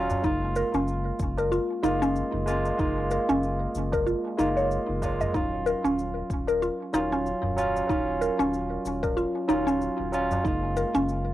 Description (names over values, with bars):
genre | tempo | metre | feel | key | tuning
organic downtempo | 94 BPM | 4/4 | swing 57% on 16ths | Eb minor | A4 = 441 Hz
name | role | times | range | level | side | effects
barky tine electric piano | accompaniment | 0.0-11.3 s | Gb3 to F4 | -29 LUFS | right 1 dB | sidechain pumping, low-pass filter, cassette tape, tape echo, plate reverb
warm sub bass | bass | 0.0-11.3 s | Eb1 to Gb1 | -33 LUFS | equal | none
shaker | drums | 0.1-11.2 s | none | -50 LUFS | left 3 dB | studio ambience
tabla | percussion | 0.1-10.4 s | none | -37 LUFS | right 1 dB | none
mallet-like synth pluck | arpeggios | 0.2-11.1 s | Db4 to Eb5 | -27 LUFS | equal | chorus, phaser, cassette tape, tape echo, plate reverb
electronic kick drum | drums | 0.2-10.6 s | none | -32 LUFS | equal | studio ambience
room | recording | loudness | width
wet booth ambience, RT60 0.2 s | home recording on cassette | -24 LUFS | side -14 dB against mid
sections
0.0-11.3 A section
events
none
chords
0.2 Gbmaj7; 5.3 Ebm7; 10.5 Gbmaj7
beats
| 0.24 0.88 1.51 2.15 | 2.79 3.43 4.07 4.71 | 5.34 5.98 6.62 7.26 | 7.90 8.54 9.18 9.81 | 10.45 11.09